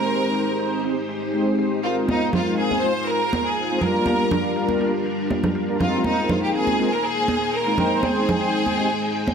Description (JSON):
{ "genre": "nu-disco, nu disco", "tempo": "121 BPM", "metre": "4/4", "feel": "swing 53% on 16ths", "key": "unclear", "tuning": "A4 = 444 Hz", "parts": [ { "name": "bright studio violin section", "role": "melody", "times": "0.0-9.3 s", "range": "Eb4 to C5", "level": "-24 LUFS", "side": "equal", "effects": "tape echo" }, { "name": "mellow synth brass", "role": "accompaniment", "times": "0.0-8.9 s", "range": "G3 to G5", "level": "-24 LUFS", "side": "equal", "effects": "chorus" }, { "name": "string machine, full ensemble", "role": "sustained chords", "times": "0.0-9.3 s", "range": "G3 to G5", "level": "-26 LUFS", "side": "left 1 dB", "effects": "ensemble chorus" }, { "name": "electronic hi-hat", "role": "drums", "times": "0.1-9.3 s", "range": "none", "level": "barely audible", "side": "none", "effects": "none" }, { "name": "congas", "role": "percussion", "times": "2.1-9.3 s", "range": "none", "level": "-26 LUFS", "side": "right 2 dB", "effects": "none" } ], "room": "moderate echo chamber reverb, RT60 2.4 s", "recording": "none", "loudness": "-19 LUFS", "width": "side -6 dB against mid", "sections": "0.0-9.3 A section", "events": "filter sweep on string machine 0.0-9.3", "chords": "0.0 Abmaj7; 2.1 Fm7; 3.8 Gm7; 6.0 Bb9sus4; 8.0 Abmaj7" }